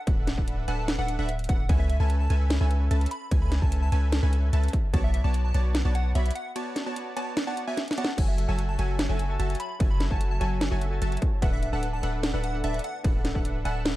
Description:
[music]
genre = future bass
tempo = 148 BPM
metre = 4/4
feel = half-time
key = unclear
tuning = A4 = 440 Hz
[part]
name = plucky unison lead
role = melody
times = 0.0-13.8 s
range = E5 to B5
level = -37 LUFS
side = equal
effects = sidechain pumping, dub echo
[part]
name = wide unison pluck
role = arpeggios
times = 0.1-13.9 s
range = F#5 to B5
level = -41 LUFS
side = equal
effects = sidechain pumping
[part]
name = supersaw stab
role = riff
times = 0.1-13.9 s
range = F#3 to B5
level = -34 LUFS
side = right 1 dB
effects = sidechain pumping
[part]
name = long sustained 808-style bass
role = bass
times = 0.1-13.9 s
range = D1 to C#2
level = -25 LUFS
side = equal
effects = sidechain pumping
[part]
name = electronic kick drum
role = drums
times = 0.1-5.0, 8.2-13.4 s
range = none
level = -25 LUFS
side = equal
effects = distortion, studio reverb
[part]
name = trap drum kit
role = drums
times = 0.1-13.9 s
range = crash cymbal, hi-hat, ride cymbal, snare drum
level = -31 LUFS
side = equal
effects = studio reverb
[part]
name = glassy digital keys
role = accompaniment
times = 8.2-13.9 s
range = D4 to A5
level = -37 LUFS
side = left 2 dB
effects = chorus, sidechain pumping, dub echo
[sound]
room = little or no reverb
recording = dark, warm production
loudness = -24 LUFS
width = side -16 dB against mid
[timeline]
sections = 0.0-14.0 A section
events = break 6.6-8.2; drum fill 7.8-8.2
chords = 0.0 D69; 1.7 Amaj7/C#; 4.9 Bm9; 8.2 F#m9; 11.4 D69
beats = | 0.07 0.48 0.88 1.29 | 1.69 2.10 2.50 2.91 | 3.31 3.72 4.12 4.53 | 4.94 5.34 5.75 6.15 | 6.56 6.96 7.37 7.77 | 8.18 8.59 8.99 9.40 | 9.80 10.21 10.61 11.02 | 11.42 11.83 12.23 12.64 | 13.04 13.45 13.86

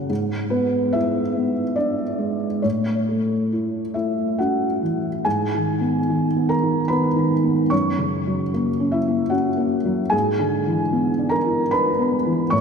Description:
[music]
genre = neoclassical minimalist piano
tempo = 68-77 BPM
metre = 3/4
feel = rubato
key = unclear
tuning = A4 = 444 Hz
[part]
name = felt-muted upright piano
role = solo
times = 0.0-12.6 s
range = F#2 to C#6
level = -19 LUFS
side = equal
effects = ping-pong delay
[sound]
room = wet lush hall reverb, RT60 2.6 s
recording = dreamy mix soaked in reverb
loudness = -19 LUFS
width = side -6 dB against mid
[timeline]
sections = 0.0-5.3 A section; 5.3-12.6 B section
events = none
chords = 0.1 E7/G#; 2.6 A; 5.3 G#m; 7.7 F#; 10.1 E7/G#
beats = | 0.10 0.96 1.79 | 2.64 3.52 4.39 | 5.25 6.09 6.90 | 7.71 8.53 9.33 | 10.13 10.93 11.73 | 12.52

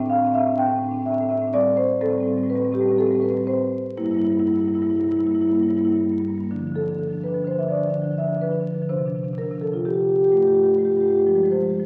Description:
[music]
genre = classical, contemporary piece for solo marimba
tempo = 125 BPM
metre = 5/4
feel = rubato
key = D minor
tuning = A4 = 438 Hz
[part]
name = marimba with soft mallets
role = solo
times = 0.0-11.9 s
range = G2 to G5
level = -21 LUFS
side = equal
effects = none
[sound]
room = wet recital hall reverb, RT60 1.7 s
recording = very old 78 rpm record, vinyl crackle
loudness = -21 LUFS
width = mono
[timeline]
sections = 0.0-6.5 A section; 6.5-11.9 B section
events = none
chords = 0.0 C69/A; 1.5 Am7; 4.0 Gm6; 6.5 Dm; 8.9 Csus24; 10.3 Gsus2; 11.3 Fmadd9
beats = 0.11 0.58 1.06 | 1.54 2.02 2.50 2.98 3.47 | 3.98 4.50 5.00 5.51 6.02 | 6.52 7.00 7.47 7.95 8.43 | 8.91 9.38 9.85 10.32 10.79 | 11.27 11.74

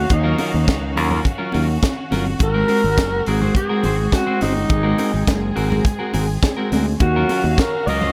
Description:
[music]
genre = disco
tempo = 104 BPM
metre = 4/4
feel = straight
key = unclear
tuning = A4 = 440 Hz
[part]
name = growling alto saxophone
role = melody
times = 0.0-8.1 s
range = Eb4 to Eb5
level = -24 LUFS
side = equal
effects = none
[part]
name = dark symphonic string section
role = sustained chords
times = 0.0-8.1 s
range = Eb3 to F5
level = -29 LUFS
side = equal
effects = none
[part]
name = fingered electric bass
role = bass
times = 0.0-8.1 s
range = Gb1 to Eb2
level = -23 LUFS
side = equal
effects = none
[part]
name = clean electric guitar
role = accompaniment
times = 0.1-8.1 s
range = Gb3 to C5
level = -26 LUFS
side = equal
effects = none
[part]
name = tight funk drum kit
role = drums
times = 0.1-8.0 s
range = hi-hat, kick drum, snare drum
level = -24 LUFS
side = equal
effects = none
[part]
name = congas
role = percussion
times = 0.1-8.1 s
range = none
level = -30 LUFS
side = equal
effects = none
[sound]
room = little or no reverb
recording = none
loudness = -19 LUFS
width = mono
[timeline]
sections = 0.0-8.1 A section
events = none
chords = 0.0 Ebm9; 2.4 Ab9; 7.0 Ebm9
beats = | 0.11 0.68 1.26 1.83 | 2.40 2.98 3.56 4.13 | 4.71 5.28 5.86 6.43 | 7.00 7.58

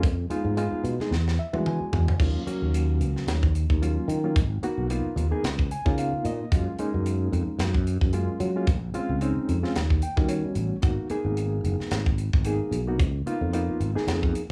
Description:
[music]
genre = electric jazz fusion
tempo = 111 BPM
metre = 4/4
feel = swing 56% on 16ths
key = Eb minor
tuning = A4 = 440 Hz
[part]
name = reed electric piano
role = accompaniment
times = 0.0-14.4 s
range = Gb3 to G#5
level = -31 LUFS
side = equal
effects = overdrive, fast tremolo
[part]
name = sustaining fretless electric bass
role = bass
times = 0.0-14.3 s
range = Gb1 to Gb3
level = -28 LUFS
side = equal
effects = none
[part]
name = tight funk drum kit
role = drums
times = 0.0-14.5 s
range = crash cymbal, hi-hat, kick drum, snare drum, toms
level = -28 LUFS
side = equal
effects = none
[sound]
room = light reverb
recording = small room ambience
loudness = -26 LUFS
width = mono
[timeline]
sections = 0.0-2.2 A section; 2.2-14.5 A section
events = drum fill 1.1-2.2; reed electric piano fill 1.1-2.2, 5.4-6.5, 9.8-10.8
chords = 0.0 Fm7b5; 1.1 E9; 2.2 Ebm9; 4.4 Abm9; 5.4 Db13; 6.5 Gbmaj9; 8.7 Bbm9; 9.8 Eb7alt; 10.8 Abm9; 13.0 Db13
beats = | 0.03 0.57 1.11 1.65 | 2.19 2.73 3.27 3.81 | 4.36 4.90 5.44 5.98 | 6.52 7.05 7.59 8.13 | 8.68 9.21 9.75 10.29 | 10.83 11.37 11.91 12.45 | 12.99 13.53 14.07

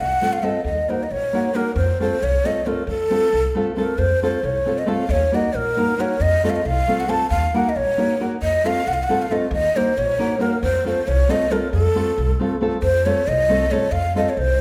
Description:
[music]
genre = balkan folk, Balkan wedding band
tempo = 271 BPM (eighths)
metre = 5/8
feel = straight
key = F phrygian dominant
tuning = A4 = 440 Hz
[part]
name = breathy mellow ney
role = melody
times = 0.0-14.6 s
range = A4 to A5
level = -23 LUFS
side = equal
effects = none
[part]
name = upright bass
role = bass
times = 0.0-14.6 s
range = Bb1 to F2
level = -26 LUFS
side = equal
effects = none
[part]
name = nylon-string guitar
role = accompaniment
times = 0.2-14.3 s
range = A3 to Bb4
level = -26 LUFS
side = equal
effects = none
[sound]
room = wet recital hall reverb, RT60 1.6 s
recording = recorded in a church or concert hall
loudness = -20 LUFS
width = mono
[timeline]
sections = 0.0-4.0 A section; 4.0-12.8 A section; 12.8-14.6 B section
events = none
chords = 0.0 F; 0.6 Ebm; 1.8 F; 5.1 Ebm; 6.2 F; 7.3 Ebm; 8.4 F; 9.5 Ebm; 10.6 F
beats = 0.20 0.43 | 0.65 0.87 1.09 1.32 1.54 | 1.76 1.99 2.21 2.43 2.65 | 2.88 3.10 3.32 3.54 3.77 | 3.99 4.21 4.43 4.65 4.87 | 5.10 5.32 5.54 5.76 5.98 | 6.20 6.42 6.64 6.87 7.09 | 7.31 7.53 7.75 7.97 8.19 | 8.41 8.63 8.86 9.08 9.30 | 9.52 9.74 9.96 10.18 10.40 | 10.62 10.84 11.06 11.28 11.50 | 11.72 11.94 12.16 12.38 12.60 | 12.82 13.04 13.26 13.48 13.70 | 13.91 14.13 14.35 14.57

